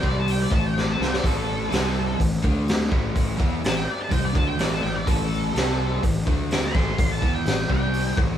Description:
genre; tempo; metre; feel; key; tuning
blues rock power trio and southern rock; 125 BPM; 4/4; straight; A minor; A4 = 435 Hz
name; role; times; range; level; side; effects
octave-fuzz lead guitar; melody; 0.0-8.2 s; A4 to D6; -29 LUFS; equal; wah, distortion
overdriven semi-hollow guitar; riff; 0.0-8.4 s; A2 to E4; -27 LUFS; left 1 dB; none
fuzz fingered electric bass; bass; 0.0-8.4 s; A1 to E2; -28 LUFS; equal; overdrive
raw garage drum kit; drums; 0.0-8.3 s; hi-hat, kick drum, snare drum; -23 LUFS; equal; none
room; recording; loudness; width
light reverb; band playing live in one room; -20 LUFS; side -10 dB against mid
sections
0.0-8.4 A section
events
drum fill 0.8-1.2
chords
0.0 C5; 0.5 Am; 1.7 C5; 2.2 A5; 2.4 D5; 2.9 Am; 5.5 C5; 6.0 A5; 6.3 D5; 6.7 A5; 7.7 C5

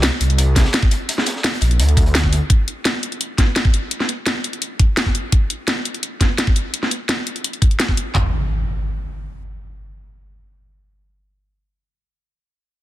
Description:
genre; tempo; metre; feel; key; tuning
liquid drum and bass; 170 BPM; 4/4; straight; unclear; A4 = 442 Hz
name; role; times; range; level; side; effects
swelling detuned saw bass; bass; 0.0-2.4 s; Bb1 to D2; -15 LUFS; equal; none
crunchy breakbeat drum kit; drums; 0.0-2.4 s; hi-hat, snare drum; -26 LUFS; equal; high-pass filter on hats, high-pass filter on snare, high-pass filter on room
drum and bass drum kit; drums; 0.0-8.0 s; hi-hat, snare drum; -20 LUFS; equal; none
drum and bass drum kit; drums; 0.6-8.2 s; handclaps, kick drum, toms; -16 LUFS; equal; none
impact; sound effects; 8.1-11.2 s; none; -24 LUFS; equal; none
room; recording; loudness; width
little or no reverb; dense, heavily limited modern master; -16 LUFS; side -14 dB against mid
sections
0.0-8.1 A section; 8.1-11.0 B section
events
none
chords
none

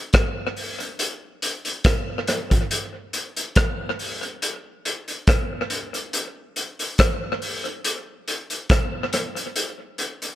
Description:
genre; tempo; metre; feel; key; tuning
reggae; 70 BPM; 4/4; swing 55% on 16ths; none; none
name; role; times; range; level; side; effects
vintage drum kit; drums; 0.1-10.4 s; hi-hat, kick drum, rim click; -21 LUFS; equal; tape echo
room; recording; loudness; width
light reverb; none; -22 LUFS; side -14 dB against mid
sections
0.0-10.4 A section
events
none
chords
none

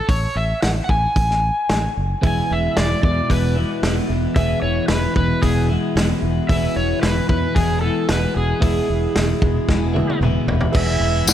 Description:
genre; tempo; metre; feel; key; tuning
folk rock and heartland rock; 113 BPM; 4/4; straight; unclear; A4 = 440 Hz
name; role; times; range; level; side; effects
overdriven slide guitar; melody; 0.0-10.2 s; G#4 to G#5; -24 LUFS; equal; slapback echo, tape echo
fingered electric bass; bass; 0.1-11.3 s; E1 to E2; -21 LUFS; equal; none
natural country drum kit; drums; 0.1-11.3 s; crash cymbal, hi-hat, kick drum, snare drum, toms; -21 LUFS; equal; none
picked steel-string acoustic guitar; accompaniment; 2.2-11.3 s; E2 to E4; -26 LUFS; left 8 dB; none
reed electric piano; accompaniment; 2.2-11.3 s; G#4 to E5; -32 LUFS; right 7 dB; slapback echo
twelve-string electric guitar; riff; 2.2-11.3 s; E2 to E4; -24 LUFS; right 1 dB; wide subtle chorus, slapback echo
warm harmonica; second line; 10.8-11.3 s; E5 to F#5; -22 LUFS; right 6 dB; none
tambourine; percussion; 11.3 s; none; -13 LUFS; left 5 dB; none
room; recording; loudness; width
light reverb, studio ambience; none; -16 LUFS; side -10 dB against mid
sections
0.0-10.7 A section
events
drum fill 9.7-10.7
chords
0.0 F#madd9 (rootless); 2.2 E

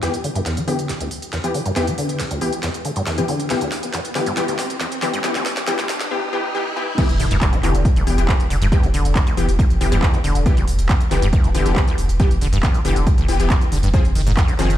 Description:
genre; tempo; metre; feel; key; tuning
driving peak-time techno; 138 BPM; 4/4; straight; E phrygian; A4 = 439 Hz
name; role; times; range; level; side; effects
acid bass, saw; riff; 0.0-14.8 s; E1 to Ab3; -24 LUFS; equal; analog chorus, sidechain pumping, tape echo
rave stab; stabs; 0.0-14.7 s; E3 to Ab4; -24 LUFS; left 3 dB; chorus, built-in reverb, sidechain pumping, tape echo
techno drum kit; drums; 0.0-14.8 s; crash cymbal, handclaps, hi-hat, ride cymbal, snare drum; -27 LUFS; right 1 dB; sidechain pumping on hats, high-pass filter on hats, low-pass filter on hats, high-pass filter on snare, low-pass filter on snare, sidechain pumping on cymbals, high-pass filter on cymbals, low-pass filter on cymbals, high-pass filter on room, low-pass filter on room
riser and impact; sound effects; 1.3-8.7 s; none; -30 LUFS; right 1 dB; none
electronic kick drum; drums; 7.0-14.5 s; none; -18 LUFS; equal; none
warm sub bass; bass; 7.1-14.8 s; E1 to F1; -19 LUFS; equal; tube saturation, sidechain pumping, low-pass filter
room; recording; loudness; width
light reverb; played on a big sound system in a bare room, large studio reverb, high-pass filter; -16 LUFS; side -12 dB against mid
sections
0.0-7.0 A section; 7.0-14.8 B section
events
build-up 0.0-7.0; drum fill 0.0-6.1; filter sweep on acid bass 0.0-7.0; filter sweep on synth stab 0.0-7.0; riser 1.3-7.0; drop 7.0-14.8; impact 7.0-8.7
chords
0.0 Em; 13.9 Fm

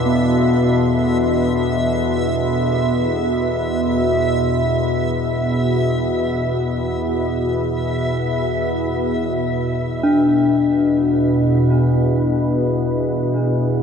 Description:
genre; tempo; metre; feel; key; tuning
dark ambient drone; free time; none; none; unclear; A4 = 438 Hz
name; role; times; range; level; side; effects
deep dark ambient pad; sustained chords; 0.0-8.9 s; E3 to C6; -33 LUFS; equal; chorus, built-in reverb
organ-like drone; drone; 0.0-13.8 s; E2 to B2; -18 LUFS; equal; ensemble chorus, built-in reverb
backwards swelling texture; texture; 0.0-8.9 s; E5; -25 LUFS; right 1 dB; built-in reverb
gamelan-type bronze metallophone; arpeggios; 0.1-13.8 s; B3 to D4; -20 LUFS; left 1 dB; diffuse ambient delay
room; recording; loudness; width
wet huge ambient reverb, RT60 6.9 s; none; -16 LUFS; side -6 dB against mid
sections
0.0-8.9 A section; 8.9-13.8 B section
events
fade-out on ambient pad 0.0-8.9; filter sweep on synth drone 8.9-13.8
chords
0.0 Amadd9/E; 8.9 E5

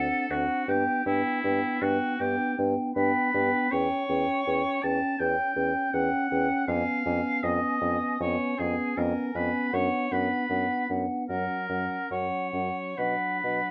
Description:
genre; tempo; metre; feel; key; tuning
classical, slow romantic movement for wind quintet; 65-83 BPM; 4/4; rubato; unclear; A4 = 440 Hz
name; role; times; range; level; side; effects
mellow hollow silver concert flute; melody; 0.0-13.7 s; F#5 to G#5; -34 LUFS; equal; none
clear oboe; second line; 0.0-13.7 s; E4 to A5; -32 LUFS; equal; none
dark clarinet; accompaniment; 0.0-13.7 s; C#4 to D4; -37 LUFS; equal; none
mellow French horn; accompaniment; 0.0-13.7 s; F#3 to C#4; -36 LUFS; equal; none
mellow bassoon; bass; 0.0-13.6 s; D2 to B2; -32 LUFS; equal; none
room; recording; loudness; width
moderate studio reverb, RT60 0.8 s; none; -27 LUFS; mono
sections
0.0-13.7 A section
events
none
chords
0.0 D7; 0.7 G; 3.7 C#dim/E; 6.7 C#7/E#; 9.7 Bm/F#; 11.3 F#; 13.0 Bm

